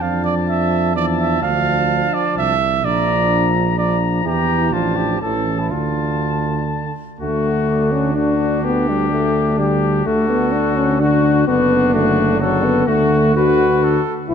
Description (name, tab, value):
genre	classical, brass quintet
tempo	126 BPM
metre	3/4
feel	rubato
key	D minor, D major from 7.2 s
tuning	A4 = 442 Hz
part	clear trumpet	melody	0.0-14.3 s	F#4 to Bb5	-23 LUFS	left 8 dB	none
part	clear trumpet	second line	0.0-14.3 s	D4 to F5	-23 LUFS	right 7 dB	none
part	warm French horn	accompaniment	0.0-14.3 s	F#3 to F#4	-19 LUFS	left 4 dB	none
part	warm trombone	accompaniment	0.0-14.3 s	D3 to F3	-25 LUFS	right 4 dB	none
part	mellow tuba	bass	0.0-14.3 s	F#1 to F2	-21 LUFS	right 3 dB	none
room	moderate concert hall reverb, RT60 2.2 s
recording	none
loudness	-15 LUFS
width	side -7 dB against mid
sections	0.0-7.2 A section; 7.2-14.3 A section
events	none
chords	0.0 Dm/F; 1.4 Dm; 2.8 Bb; 4.3 Edim; 4.7 Dm/A; 5.2 A; 5.7 Dm; 7.2 D; 8.6 G5/D; 10.1 D; 11.5 D/F#; 12.9 D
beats	| 0.01 0.48 0.95 | 1.42 1.89 2.36 | 2.83 3.31 3.78 | 4.26 4.74 5.22 | 5.71 6.21 6.70 | 7.20 7.68 8.16 | 8.63 9.11 9.59 | 10.06 10.53 11.00 | 11.47 11.94 12.40 | 12.87 13.36 13.83 | 14.30